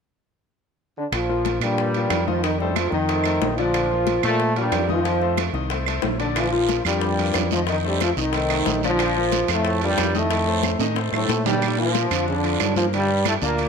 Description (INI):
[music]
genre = latin, salsa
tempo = 183 BPM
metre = 4/4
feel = straight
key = Bb major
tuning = A4 = 440 Hz
[part]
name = bright trombone section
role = melody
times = 1.0-13.7 s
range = G2 to F4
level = -22 LUFS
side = equal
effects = none
[part]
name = fingered electric bass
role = bass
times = 1.1-13.7 s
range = Bb1 to Bb2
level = -26 LUFS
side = right 1 dB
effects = none
[part]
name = bongos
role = percussion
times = 1.1-11.5 s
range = none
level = -32 LUFS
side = left 11 dB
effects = none
[part]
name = claves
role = percussion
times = 1.1-13.4 s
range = none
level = -32 LUFS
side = right 14 dB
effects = none
[part]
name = congas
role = percussion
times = 1.1-13.7 s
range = none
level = -32 LUFS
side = left 13 dB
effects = none
[part]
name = timbales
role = percussion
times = 1.1-13.7 s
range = none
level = -29 LUFS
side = right 14 dB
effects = none
[part]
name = bright concert grand piano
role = accompaniment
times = 1.3-13.7 s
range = D3 to Eb5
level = -28 LUFS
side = left 10 dB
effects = none
[part]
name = guiro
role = percussion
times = 6.4-13.7 s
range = none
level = -31 LUFS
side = right 14 dB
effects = none
[sound]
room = moderate echo chamber reverb, RT60 1.6 s, studio reverb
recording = 1960s-style stereo with parts hard left and right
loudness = -19 LUFS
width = side -6 dB against mid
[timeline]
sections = 0.0-1.1 A section; 1.1-11.6 B section; 11.6-13.7 C section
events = drum fill 10.6-11.6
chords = 0.0 N.C.; 1.1 Bb5; 2.4 F7; 3.7 Bbadd9; 5.1 F7; 6.4 Bb; 7.7 Bbadd9; 10.3 F7; 11.6 Bb; 12.9 Gm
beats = 0.14 0.47 0.80 | 1.13 1.45 1.78 2.11 | 2.44 2.76 3.09 3.42 | 3.74 4.07 4.40 4.73 | 5.05 5.38 5.71 6.04 | 6.37 6.69 7.02 7.35 | 7.68 8.01 8.34 8.66 | 8.99 9.32 9.65 9.98 | 10.31 10.63 10.96 11.29 | 11.62 11.94 12.27 12.60 | 12.93 13.25 13.58